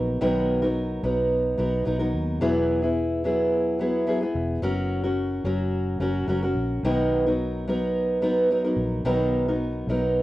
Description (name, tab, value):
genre	acoustic pop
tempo	109 BPM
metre	4/4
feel	straight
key	B major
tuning	A4 = 441 Hz
part	fingerpicked steel-string acoustic guitar	accompaniment	0.0-10.2 s	B2 to A#4	-23 LUFS	equal	cassette tape
part	vintage muted fingered electric bass	bass	0.0-10.2 s	E1 to D#2	-30 LUFS	equal	none
room	light reverb, studio ambience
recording	home recording on cassette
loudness	-22 LUFS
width	side -16 dB against mid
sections	0.0-10.2 A section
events	none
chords	0.0 Bmaj7; 2.4 Eadd9; 4.6 F#; 6.8 Bmaj7